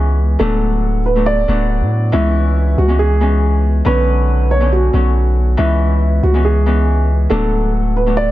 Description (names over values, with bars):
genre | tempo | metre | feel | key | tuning
hip hop, trap | 139 BPM | 4/4 | half-time | C# phrygian | A4 = 439 Hz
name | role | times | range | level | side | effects
dark concert grand piano | melody | 0.0-8.3 s | E4 to D5 | -19 LUFS | right 3 dB | low-pass filter, tape echo
Celtic harp | accompaniment | 0.0-8.3 s | D3 to D4 | -19 LUFS | left 4 dB | low-pass filter
long sustained 808-style bass | bass | 0.0-8.3 s | D1 to A2 | -14 LUFS | equal | none
room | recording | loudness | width
small room ambience | none | -12 LUFS | side -15 dB against mid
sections
0.0-8.3 A section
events
none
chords
0.4 D6; 2.1 C#m7; 3.9 Bmadd9; 5.6 C#m7; 7.3 D6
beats
| 0.40 0.84 1.27 1.70 | 2.13 2.56 2.99 3.43 | 3.86 4.29 4.72 5.15 | 5.58 6.01 6.45 6.88 | 7.31 7.74 8.17